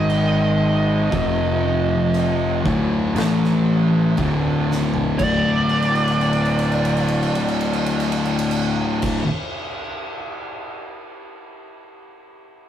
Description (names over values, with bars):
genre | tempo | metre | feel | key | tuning
stoner and doom metal | 59 BPM | 4/4 | straight | D phrygian | A4 = 441 Hz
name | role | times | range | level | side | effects
fuzz lead guitar | melody | 0.0-9.2 s | D5 to D#5 | -23 LUFS | right 3 dB | wah, distortion
thick fuzz guitar | riff | 0.0-9.2 s | D2 to A3 | -20 LUFS | left 3 dB | distortion
thick fuzz guitar | riff | 0.0-9.2 s | D2 to A3 | -25 LUFS | right 4 dB | distortion
modern bright picked electric bass | bass | 0.0-9.2 s | D1 to A1 | -26 LUFS | equal | overdrive
oversized low-tuned drum kit | drums | 0.1-10.7 s | crash cymbal, kick drum, ride cymbal, snare drum, toms | -27 LUFS | right 1 dB | none
room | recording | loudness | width
moderate studio reverb, RT60 0.6 s | rough rehearsal-room recording, tube saturation | -17 LUFS | side -10 dB against mid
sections
0.0-5.2 A section; 5.2-9.3 B section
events
drum fill 4.7-5.2, 5.7-9.0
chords
0.0 G#5; 1.1 F5; 2.6 D5; 3.2 A5; 4.2 D5